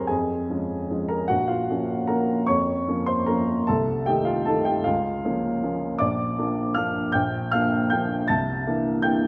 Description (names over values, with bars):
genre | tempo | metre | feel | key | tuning
classical, piano waltz | 154 BPM | 3/4 | uneven beats, rubato | unclear | A4 = 439 Hz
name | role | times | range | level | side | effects
warm upright piano | solo | 0.0-9.3 s | Bb1 to A6 | -24 LUFS | equal | none
room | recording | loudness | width
wet recital hall reverb, RT60 1.4 s | none | -24 LUFS | mono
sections
0.0-9.3 A section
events
none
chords
0.1 Db/F; 1.3 Bbm; 3.7 Adim/C; 4.9 Bbm/Db; 6.0 Gm7/Bb; 8.3 C13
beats
| 0.10 0.49 0.90 | 1.30 1.69 2.09 | 2.48 2.88 3.29 | 3.69 4.07 4.47 | 4.85 5.24 5.63 | 6.00 6.38 6.77 | 7.15 7.53 7.92 | 8.29 8.66 9.05